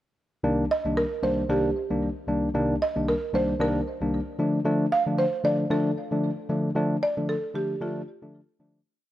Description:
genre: afrobeats.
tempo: 114 BPM.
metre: 4/4.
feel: swing 58% on 16ths.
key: C dorian.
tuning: A4 = 440 Hz.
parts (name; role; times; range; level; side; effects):
barky tine electric piano; accompaniment; 0.4-8.8 s; C2 to D4; -25 LUFS; left 1 dB; none.
buzzing marimba with medium mallets; melody; 0.7-8.6 s; F4 to F5; -27 LUFS; right 2 dB; tape echo.
room: light reverb.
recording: none.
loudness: -23 LUFS.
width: side -14 dB against mid.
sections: 0.4-8.9 breakdown.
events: fade-out 6.8-8.9.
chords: 0.4 Cm7; 4.4 Dm.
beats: | 0.44 0.96 1.49 2.02 | 2.54 3.07 3.60 4.12 | 4.65 5.17 5.70 6.23 | 6.75 7.28 7.81 8.33.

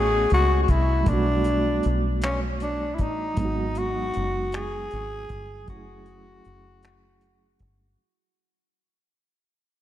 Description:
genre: slow six-eight R&B.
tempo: 52 BPM (dotted quarters).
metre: 6/8.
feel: straight.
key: F# dorian.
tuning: A4 = 438 Hz.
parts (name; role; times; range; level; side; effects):
growling tenor saxophone; melody; 0.0-7.6 s; C#4 to G#4; -26 LUFS; left 1 dB; ping-pong delay.
overdriven reed electric piano; accompaniment; 0.0-8.0 s; F#3 to D#5; -30 LUFS; right 3 dB; fast tremolo.
deep dub fingered electric bass; bass; 0.0-8.0 s; F#1 to C#2; -26 LUFS; equal; none.
cloth-damped thuddy drum kit; drums; 0.3-7.8 s; finger snaps, hi-hat, kick drum; -29 LUFS; equal; none.
room: moderate lush hall reverb, RT60 2.9 s.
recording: dreamy mix soaked in reverb.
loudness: -22 LUFS.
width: side -12 dB against mid.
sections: 0.0-8.0 A section.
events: fade-out 0.0-8.0.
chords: 0.0 B9; 1.1 Gmaj7/B; 3.4 G#m7; 5.7 F#m7.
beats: | 1.06 2.21 | 3.37 4.52 | 5.68 6.83.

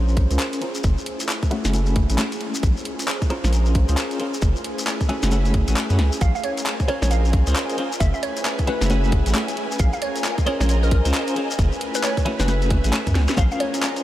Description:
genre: UK garage, two-step garage.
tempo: 134 BPM.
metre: 4/4.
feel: swing 62% on 16ths.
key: unclear.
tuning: A4 = 440 Hz.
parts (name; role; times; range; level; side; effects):
airy breathy pad; sustained chords; 0.0-13.4 s; A3 to C5; -31 LUFS; equal; chorus, sidechain pumping.
twelve-string electric guitar; stabs; 0.0-14.0 s; A3 to C5; -27 LUFS; left 1 dB; tremolo, low-pass filter, diffuse ambient delay.
saturated sub bass; bass; 0.0-13.5 s; Gb1 to Gb2; -20 LUFS; equal; none.
dark studio string section; texture; 0.0-14.0 s; Bb4 to Ab5; -33 LUFS; equal; sidechain pumping.
shekere; percussion; 0.1-14.0 s; none; -34 LUFS; left 3 dB; none.
electronic kick drum; drums; 0.2-13.5 s; none; -21 LUFS; equal; overdrive, studio reverb.
garage drum kit; drums; 0.2-14.0 s; handclaps, hi-hat, snare drum; -28 LUFS; equal; overdrive, studio reverb.
glassy wavetable pluck; melody; 6.2-13.8 s; Bb4 to F5; -28 LUFS; equal; chorus, diffuse ambient delay.
room: light reverb.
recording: none.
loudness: -19 LUFS.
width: side -14 dB against mid.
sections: 0.0-13.4 A section.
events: fade-in on string section 0.0-13.4; filter sweep on clean electric guitar 0.0-13.4; drum fill 13.2.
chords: 0.0 Bbm9; 0.8 Gbm9; 2.6 Bbm9; 4.4 Gbm9; 6.2 Bbm9; 8.0 Gbm9; 9.8 Bbm9; 11.6 Gbm9; 13.4 Bbm9.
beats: 0.39 | 0.84 1.29 1.74 2.18 | 2.63 3.08 3.53 3.98 | 4.42 4.87 5.32 5.77 | 6.21 6.66 7.11 7.56 | 8.01 8.45 8.90 9.35 | 9.80 10.24 10.69 11.14 | 11.59 12.04 12.48 12.93 | 13.38 13.83.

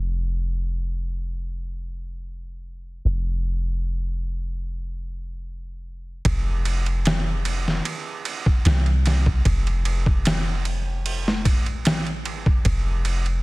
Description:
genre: trip hop.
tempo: 75 BPM.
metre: 4/4.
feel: straight.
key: F minor.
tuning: A4 = 440 Hz.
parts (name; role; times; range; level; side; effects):
soft 808-style bass; bass; 0.0-13.4 s; F1 to C2; -24 LUFS; equal; none.
trip hop sampler-style drum kit; drums; 6.2-13.4 s; kick drum, ride cymbal, snare drum; -22 LUFS; equal; overdrive, small room ambience.
room: little or no reverb.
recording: dense, heavily limited modern master.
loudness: -21 LUFS.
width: side -22 dB against mid.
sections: 0.0-6.2 A section; 6.2-13.4 B section.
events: none.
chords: none.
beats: 0.65 1.45 2.25 | 3.05 3.85 4.65 5.45 | 6.25 7.05 7.85 8.65 | 9.45 10.25 11.05 11.85 | 12.65.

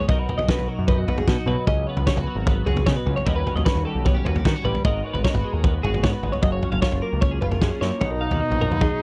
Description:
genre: math rock and midwest emo.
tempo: 151 BPM.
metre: 4/4.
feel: straight.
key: B lydian.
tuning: A4 = 439 Hz.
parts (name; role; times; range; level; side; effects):
twelve-string electric guitar; accompaniment; 0.0-9.0 s; G#2 to B4; -31 LUFS; equal; analog chorus.
twelve-string electric guitar; arpeggios; 0.0-9.0 s; F#4 to E#5; -30 LUFS; equal; none.
growling picked electric bass; bass; 0.1-8.9 s; F#1 to D#3; -28 LUFS; equal; overdrive.
loose indie drum kit; drums; 0.1-8.9 s; kick drum, snare drum, toms; -25 LUFS; equal; none.
clear trumpet; melody; 8.0-9.0 s; D#4; -28 LUFS; equal; none.
room: little or no reverb.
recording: dry, close 1970s-style studio recording.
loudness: -22 LUFS.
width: mono.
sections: 0.0-8.0 A section; 8.0-9.0 B section.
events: drum fill 1.3-1.7, 7.8.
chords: 0.1 Bmaj7; 1.7 C#7sus4; 3.3 D#7alt; 4.8 G#m9; 6.4 F#maj9; 8.0 Bmaj7.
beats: | 0.08 0.48 0.88 1.27 | 1.67 2.07 2.46 2.86 | 3.26 3.65 4.05 4.45 | 4.84 5.24 5.63 6.03 | 6.43 6.82 7.22 7.62 | 8.01 8.41 8.81.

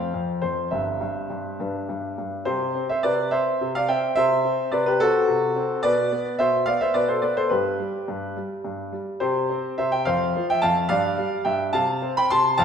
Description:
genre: classical-period piano sonatina.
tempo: 71 BPM (dotted quarters).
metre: 6/8.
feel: straight.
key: C major.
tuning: A4 = 439 Hz.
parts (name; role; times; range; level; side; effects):
clear concert grand piano; solo; 0.0-12.6 s; G1 to C6; -21 LUFS; equal; none.
room: wet recital hall reverb, RT60 1.5 s.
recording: recorded in a church or concert hall.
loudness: -21 LUFS.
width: side -7 dB against mid.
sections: 0.0-2.5 A section; 2.5-12.6 B section.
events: none.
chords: 0.0 F5; 0.7 C/G; 1.6 G; 2.5 C; 4.2 Cmaj7#11; 5.8 D7sus2/B; 7.5 N.C.; 9.2 C; 10.1 F5; 10.9 G5; 11.7 C5.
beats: | 0.72 1.59 | 2.46 3.31 | 4.16 4.99 | 5.82 6.66 | 7.51 8.36 | 9.22 10.06 | 10.90 11.74 | 12.57.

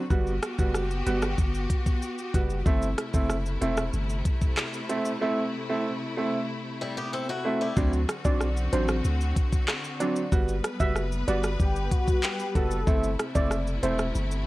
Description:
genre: dancehall.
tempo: 94 BPM.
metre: 4/4.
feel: straight.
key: unclear.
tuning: A4 = 439 Hz.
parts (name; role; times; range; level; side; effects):
clear studio string section; sustained chords; 0.0-14.5 s; C3 to B4; -35 LUFS; left 2 dB; sidechain pumping.
bright grand piano; accompaniment; 0.1-14.0 s; F#3 to F#4; -29 LUFS; right 2 dB; sidechain pumping.
punchy sub bass; bass; 0.1-14.4 s; E1 to D2; -28 LUFS; equal; none.
afro-pop drum kit; drums; 0.1-14.5 s; handclaps, hi-hat, kick drum, rim click, shaker; -26 LUFS; equal; none.
picked swing-style acoustic guitar; arpeggios; 6.8-7.9 s; G3 to A4; -31 LUFS; left 2 dB; none.
steel pan; melody; 8.2-13.9 s; C5 to E5; -32 LUFS; right 1 dB; digital delay.
warm velvety synth lead; second line; 11.6-13.2 s; F#4 to A4; -31 LUFS; left 2 dB; chorus, digital delay.
room: small room ambience.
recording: worn, warbling old tape, cassette tape, warbly pitch drift.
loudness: -24 LUFS.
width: side -18 dB against mid.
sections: 0.0-7.8 A section; 7.8-14.5 B section.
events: break 5.2-7.8.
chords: 0.1 Gmaj7; 2.7 C6; 5.2 Am; 7.8 D7; 10.3 Gmaj7; 12.9 C6.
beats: | 0.11 0.75 1.39 2.02 | 2.66 3.30 3.94 4.58 | 5.21 5.85 6.49 7.13 | 7.77 8.41 9.04 9.68 | 10.32 10.96 11.60 12.24 | 12.87 13.51 14.15.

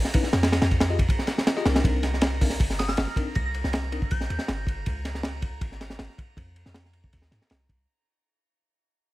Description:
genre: drum and bass, jungle.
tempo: 159 BPM.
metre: 4/4.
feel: straight.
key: C minor.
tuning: A4 = 439 Hz.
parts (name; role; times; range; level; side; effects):
warm 808-style bass; bass; 0.0-7.9 s; G1 to Ab2; -28 LUFS; equal; none.
crunchy breakbeat drum kit; drums; 0.0-7.8 s; hi-hat, kick drum, ride cymbal, snare drum; -24 LUFS; equal; none.
drifting glass-harmonics texture; texture; 0.0-7.9 s; Bb5; -40 LUFS; right 3 dB; chorus, built-in reverb.
bell-like tine electric piano; stabs; 0.1-4.0 s; C4 to Eb5; -33 LUFS; left 4 dB; dub echo.
soft synth bell; melody; 2.8-4.6 s; Eb6 to Bb6; -36 LUFS; right 1 dB; chorus, dub echo.
room: small room ambience.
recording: none.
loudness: -23 LUFS.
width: side -17 dB against mid.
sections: 0.0-1.8 A section; 1.8-7.9 B section.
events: drop 0.0-1.8; fade-out 1.8-7.9.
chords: 0.3 F7(no3); 1.8 Cm9; 4.9 Db5; 6.4 F5.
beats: | 0.33 0.71 1.09 1.47 | 1.84 2.22 2.60 2.98 | 3.35 3.73 4.11 4.49 | 4.86 5.24 5.62 5.99 | 6.37 6.75 7.13 7.50.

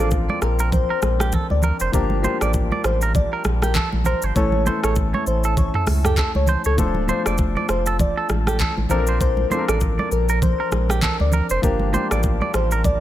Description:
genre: afrobeats.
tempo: 99 BPM.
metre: 4/4.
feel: swing 58% on 16ths.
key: unclear.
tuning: A4 = 438 Hz.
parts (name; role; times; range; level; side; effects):
soft struck synth lead; melody; 0.0-13.0 s; A4 to D5; -26 LUFS; left 2 dB; chorus, ping-pong delay.
warm grand piano; accompaniment; 0.0-13.0 s; E3 to C5; -27 LUFS; left 4 dB; none.
mellow brass ensemble; sustained chords; 0.0-13.0 s; G3 to A5; -33 LUFS; right 2 dB; sidechain pumping.
clean electric guitar; riff; 0.0-12.8 s; G4 to D5; -27 LUFS; right 4 dB; ping-pong delay.
saturated sub bass; bass; 0.0-13.0 s; D1 to D2; -21 LUFS; equal; none.
afro-pop drum kit; drums; 0.1-13.0 s; handclaps, hi-hat, kick drum, rim click, shaker, toms; -23 LUFS; equal; none.
congas; percussion; 0.3-13.0 s; none; -28 LUFS; right 2 dB; none.
room: little or no reverb.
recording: none.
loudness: -18 LUFS.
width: side -13 dB against mid.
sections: 0.0-13.0 A section.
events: none.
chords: 0.0 Bbadd9; 1.9 Gm7; 4.4 A; 6.8 Dm; 8.9 Bbadd9; 11.6 Gm7.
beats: 0.12 0.72 1.33 | 1.93 2.54 3.15 3.75 | 4.36 4.96 5.57 6.18 | 6.78 7.39 7.99 8.60 | 9.21 9.81 10.42 11.03 | 11.63 12.24 12.84.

